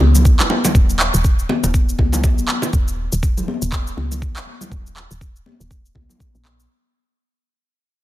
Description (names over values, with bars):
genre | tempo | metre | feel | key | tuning
afro house | 121 BPM | 4/4 | swing 58% on 16ths | unclear | A4 = 440 Hz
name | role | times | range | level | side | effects
woody FM bass | bass | 0.0-6.7 s | Eb1 to Db2 | -19 LUFS | equal | sidechain pumping
bongos | percussion | 0.0-2.7 s | none | -25 LUFS | right 2 dB | none
congas | percussion | 0.0-6.6 s | none | -24 LUFS | left 3 dB | none
electronic shaker and handclaps | drums | 0.2-6.7 s | none | -22 LUFS | equal | none
electronic kick drum | drums | 0.3-6.3 s | none | -16 LUFS | equal | none
room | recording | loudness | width
digital ambience | dense, heavily limited modern master | -15 LUFS | side -15 dB against mid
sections
0.0-6.7 A section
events
fade-out 0.0-6.7; filter sweep on FM bass 0.0-6.7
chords
none